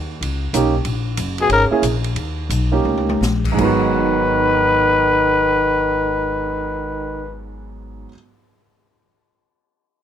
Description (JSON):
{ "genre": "jazz, small-group swing and bop", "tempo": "160-188 BPM", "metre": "4/4", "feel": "swing 64% on 8ths", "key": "G# minor", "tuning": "A4 = 438 Hz", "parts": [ { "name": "upright bass", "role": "bass", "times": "0.0-8.0 s", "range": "F#1 to D#2", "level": "-23 LUFS", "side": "left 1 dB", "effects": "none" }, { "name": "open jazz drum kit", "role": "drums", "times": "0.2-6.5 s", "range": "crash cymbal, cymbal swell, hi-hat, kick drum, ride cymbal, snare drum, toms", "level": "-26 LUFS", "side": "left 2 dB", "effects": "none" }, { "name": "warm concert grand piano", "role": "accompaniment", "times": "0.5-8.1 s", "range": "G#2 to G#4", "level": "-22 LUFS", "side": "right 6 dB", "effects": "none" }, { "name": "growling trumpet", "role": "melody", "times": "1.4-7.4 s", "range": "G#4 to B4", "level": "-17 LUFS", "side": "left 4 dB", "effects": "none" }, { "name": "bright trombone", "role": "second line", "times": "1.4-7.3 s", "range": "B2 to D#3", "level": "-23 LUFS", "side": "right 4 dB", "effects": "none" } ], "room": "little or no reverb", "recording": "dark, warm production", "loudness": "-15 LUFS", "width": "side -9 dB against mid", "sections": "0.0-3.6 A section; 3.6-6.6 B section", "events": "slowing down 0.9-3.6; drum fill 2.9-3.2", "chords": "0.0 D#7; 0.9 A#7(no3); 2.2 D#7; 3.6 G#m7" }